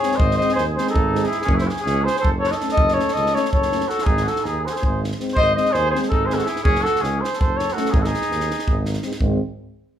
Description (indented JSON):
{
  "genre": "balkan folk, Balkan brass band",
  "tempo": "325 BPM (eighths)",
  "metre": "7/8",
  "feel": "straight",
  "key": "G# phrygian dominant",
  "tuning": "A4 = 439 Hz",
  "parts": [
    { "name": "warm flugelhorn", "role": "melody", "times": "0.0-8.9 s", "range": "G#4 to D#5", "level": "-21 LUFS", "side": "left 1 dB", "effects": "none" },
    { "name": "mellow trumpet", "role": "second line", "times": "0.0-8.8 s", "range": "C#4 to B#4", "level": "-26 LUFS", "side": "right 2 dB", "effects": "none" },
    { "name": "mellow French horn", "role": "accompaniment", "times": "0.0-9.4 s", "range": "B#3 to C#4", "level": "-29 LUFS", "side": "left 6 dB", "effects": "none" },
    { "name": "mellow euphonium", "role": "accompaniment", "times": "0.0-9.4 s", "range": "G#3 to A3", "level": "-30 LUFS", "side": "right 8 dB", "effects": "none" },
    { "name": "compact cocktail drum kit", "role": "percussion", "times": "0.0-9.4 s", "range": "kick drum, snare drum", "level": "-23 LUFS", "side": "equal", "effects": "none" },
    { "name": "mellow tuba", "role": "bass", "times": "0.2-9.4 s", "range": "F#1 to D#2", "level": "-25 LUFS", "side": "right 1 dB", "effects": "none" }
  ],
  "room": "moderate large studio reverb, RT60 0.8 s",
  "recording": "band playing live in one room",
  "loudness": "-18 LUFS",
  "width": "side -10 dB against mid",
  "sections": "0.0-9.2 A section",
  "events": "none",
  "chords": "0.0 G#; 1.5 F#m; 4.1 G#; 6.6 F#m; 7.9 G#5; 9.2 G#"
}